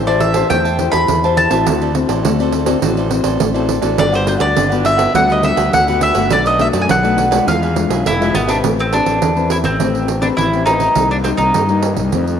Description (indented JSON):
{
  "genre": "samba and choro",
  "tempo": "103 BPM",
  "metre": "4/4",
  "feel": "straight",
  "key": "A minor",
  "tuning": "A4 = 440 Hz",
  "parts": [
    { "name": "mandolin", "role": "melody", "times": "0.0-11.9 s", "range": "B3 to B5", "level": "-16 LUFS", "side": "equal", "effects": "cassette tape" },
    { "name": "cavaquinho", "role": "accompaniment", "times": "0.0-8.6 s", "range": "D4 to A5", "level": "-23 LUFS", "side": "right 9 dB", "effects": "none" },
    { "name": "nylon-string guitar", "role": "accompaniment", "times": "0.0-12.4 s", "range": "F2 to C5", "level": "-19 LUFS", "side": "left 8 dB", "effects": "none" },
    { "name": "fuzz fingered electric bass", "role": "bass", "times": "0.0-12.4 s", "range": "F1 to G2", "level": "-20 LUFS", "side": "equal", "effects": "overdrive" },
    { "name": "pandeiro", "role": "percussion", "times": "0.1-12.4 s", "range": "none", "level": "-20 LUFS", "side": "right 8 dB", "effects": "none" }
  ],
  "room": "moderate lush hall reverb, RT60 2.7 s",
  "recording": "home recording on cassette",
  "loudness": "-12 LUFS",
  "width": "side -8 dB against mid",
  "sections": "0.0-8.6 A section; 8.6-12.4 B section",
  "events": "none",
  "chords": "0.0 Am7; 1.7 D9; 4.0 Gmaj7; 6.3 Bm7; 7.5 E7b9; 8.6 Am9; 11.0 Cm7",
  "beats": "0.51 1.09 | 1.67 2.25 2.83 3.41 | 3.99 4.57 5.15 5.73 | 6.31 6.89 7.47 8.05 | 8.63 9.22 9.80 10.38 | 10.96 11.54 12.13"
}